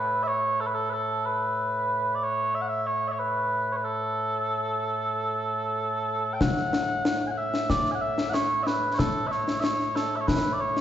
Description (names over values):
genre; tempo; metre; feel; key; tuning
scottish traditional, Scottish pipe music; 93 BPM; 4/4; straight; A major; A4 = 440 Hz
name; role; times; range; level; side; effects
mellow small bagpipes; melody; 0.0-10.8 s; A2 to G#5; -25 LUFS; right 1 dB; none
concert snare drum and concert bass drum; drums; 6.4-10.8 s; none; -27 LUFS; left 2 dB; none
room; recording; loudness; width
wet concert hall reverb, RT60 2.3 s; heard from further back in the room, nothing above 7.7 kHz; -24 LUFS; side -10 dB against mid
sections
0.0-6.4 A section; 6.4-10.8 A section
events
none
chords
none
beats
0.60 | 1.25 1.90 2.54 3.19 | 3.83 4.48 5.12 5.77 | 6.41 7.06 7.70 8.35 | 8.99 9.64 10.28